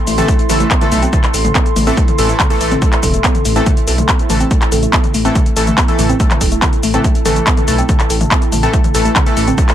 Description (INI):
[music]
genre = driving peak-time techno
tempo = 142 BPM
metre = 4/4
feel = straight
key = A minor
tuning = A4 = 442 Hz
[part]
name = deep dark ambient pad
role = texture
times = 0.0-9.7 s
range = E4 to C6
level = -22 LUFS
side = right 1 dB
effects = chorus, built-in reverb, sidechain pumping
[part]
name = woody wave-folded pluck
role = riff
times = 0.1-9.7 s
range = A3 to A4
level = -20 LUFS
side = equal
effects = chorus, sidechain pumping, dub echo
[part]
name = dark detuned saw bass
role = bass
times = 0.1-9.5 s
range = E1 to B1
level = -17 LUFS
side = equal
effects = sidechain pumping
[part]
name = techno drum kit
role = drums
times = 0.1-9.7 s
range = handclaps, hi-hat, shaker, toms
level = -18 LUFS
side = left 1 dB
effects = sidechain pumping on hats, sidechain pumping on toms, sidechain pumping on perc
[part]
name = supersaw stab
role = stabs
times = 0.2-9.5 s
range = E3 to A4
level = -20 LUFS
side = left 1 dB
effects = sidechain pumping, dub echo
[part]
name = electronic kick drum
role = drums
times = 0.3-9.7 s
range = none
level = -14 LUFS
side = equal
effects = none
[sound]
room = light reverb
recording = echo-heavy mix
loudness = -11 LUFS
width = side -11 dB against mid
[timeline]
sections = 0.0-9.7 A section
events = none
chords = 0.0 A5